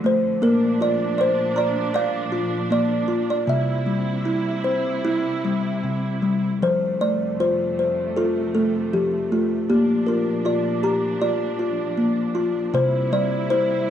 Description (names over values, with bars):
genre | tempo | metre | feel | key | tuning
children's music, lullaby | 78 BPM | 4/4 | rubato | F major | A4 = 440 Hz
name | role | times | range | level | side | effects
kalimba | melody | 0.0-13.9 s | C3 to Bb5 | -20 LUFS | left 1 dB | none
clear symphonic string section | sustained chords | 0.0-13.9 s | F2 to E4 | -28 LUFS | right 3 dB | none
room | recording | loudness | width
light reverb | dry, close 1970s-style studio recording | -19 LUFS | side -10 dB against mid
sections
0.0-6.6 A section; 6.6-13.9 B section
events
none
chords
0.4 Bb; 3.5 C; 6.6 F; 9.7 Bb; 12.7 C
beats
| 0.42 1.18 1.94 2.70 | 3.47 4.25 5.03 5.82 | 6.61 7.39 8.16 8.92 | 9.69 10.45 11.21 11.97 | 12.73 13.50